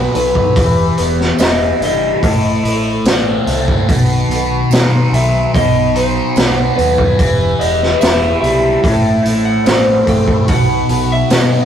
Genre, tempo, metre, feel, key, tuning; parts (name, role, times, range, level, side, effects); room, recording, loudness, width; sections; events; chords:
psychedelic rock; 73 BPM; 4/4; straight; B phrygian dominant; A4 = 442 Hz
clean lap steel guitar; melody; 0.0-11.7 s; B4 to G5; -18 LUFS; left 1 dB
combo organ; sustained chords; 0.0-11.7 s; D#3 to B5; -26 LUFS; right 5 dB
fuzz guitar; riff; 0.0-11.7 s; A2 to E4; -15 LUFS; left 1 dB; distortion, phaser
fingered electric bass; bass; 0.0-11.6 s; E1 to B2; -20 LUFS; right 1 dB
raw garage drum kit; drums; 0.1-11.5 s; hi-hat, kick drum, snare drum; -16 LUFS; right 1 dB
tambourine; percussion; 1.4-11.5 s; -32 LUFS; right 7 dB
moderate studio reverb, RT60 0.6 s; rough rehearsal-room recording, warm saturation; -11 LUFS; side -9 dB against mid
0.0-11.7 A section
0.0 B; 0.6 Em; 2.2 Am; 3.9 B; 7.2 Em; 8.8 Am; 10.5 B